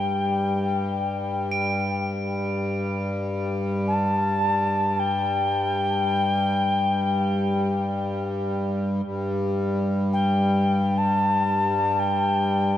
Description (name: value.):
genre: world meditative, free-time meditation music.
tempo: free time.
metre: none.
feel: none.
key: unclear.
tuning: A4 = 442 Hz.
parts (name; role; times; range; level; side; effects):
bright reedy alto ocarina; melody; 0.0-12.8 s; G5 to A5; -24 LUFS; left 2 dB; diffuse ambient delay.
hand-pumped harmonium; drone; 0.0-12.8 s; G2; -24 LUFS; left 1 dB; none.
crotales; texture; 1.5-9.5 s; D7; -32 LUFS; right 5 dB; none.
room: moderate huge ambient reverb, RT60 7.4 s.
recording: dark, warm production.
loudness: -21 LUFS.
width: side -11 dB against mid.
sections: 0.0-9.0 A section; 9.0-12.8 A section.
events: none.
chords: none.